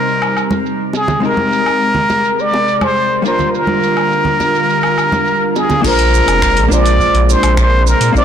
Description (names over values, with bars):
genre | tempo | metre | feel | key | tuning
sunset chillout | 104 BPM | 4/4 | straight | unclear | A4 = 443 Hz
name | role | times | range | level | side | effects
trumpet with plunger mute | melody | 0.0-8.2 s | Ab4 to D5 | -14 LUFS | equal | tape echo
vintage hollow-body jazz guitar | accompaniment | 0.0-8.2 s | G3 to C5 | -21 LUFS | moving between left 4 dB and right 4 dB | auto-pan
lush unison pad | sustained chords | 0.0-8.2 s | C3 to Bb4 | -20 LUFS | equal | chorus
deep house drum kit | drums | 0.1-8.2 s | crash cymbal, finger snaps, hi-hat, shaker, woodblock | -23 LUFS | left 1 dB | low-pass filter on perc, low-pass filter on cymbals, low-pass filter on hats, soft clipping on snare, low-pass filter on snare, low-pass filter on room
congas and bongos | percussion | 0.5-5.8 s | none | -21 LUFS | right 2 dB | none
warm sub bass | bass | 5.8-8.2 s | F1 to Bb2 | -13 LUFS | equal | none
electronic kick drum | drums | 5.8-8.2 s | none | -20 LUFS | right 1 dB | none
room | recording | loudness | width
moderate plate reverb, RT60 2.1 s | blown-out, overdriven recording, overdrive | -11 LUFS | side -8 dB against mid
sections
0.0-5.8 A section; 5.8-8.2 B section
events
filter sweep on analog synth pad 0.0-5.8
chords
0.0 Eb6; 1.2 Abmaj9; 3.2 Gm7; 5.8 Bb9